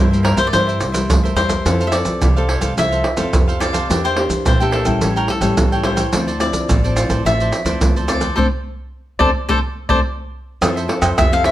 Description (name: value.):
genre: samba and choro.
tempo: 107 BPM.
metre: 4/4.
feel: straight.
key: D minor.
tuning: A4 = 440 Hz.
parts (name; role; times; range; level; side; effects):
cavaquinho; melody; 0.0-11.5 s; A4 to F5; -21 LUFS; left 2 dB; none.
cavaquinho; accompaniment; 0.0-11.5 s; D4 to G5; -26 LUFS; right 3 dB; none.
nylon-string guitar; accompaniment; 0.0-11.5 s; G2 to A4; -23 LUFS; left 2 dB; none.
upright bass; bass; 0.0-11.5 s; A1 to F3; -22 LUFS; equal; none.
maracas, pandeiro, surdo and tamborim; percussion; 0.1-11.5 s; none; -18 LUFS; right 1 dB; none.
room: moderate studio reverb, RT60 0.9 s.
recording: none.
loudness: -15 LUFS.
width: side -14 dB against mid.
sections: 0.0-10.6 A section.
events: band accent 8.4-10.6.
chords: 0.0 C7; 1.7 Fmaj7; 3.9 Em7b5; 5.0 A7; 6.1 Dm9; 10.6 Fmaj7.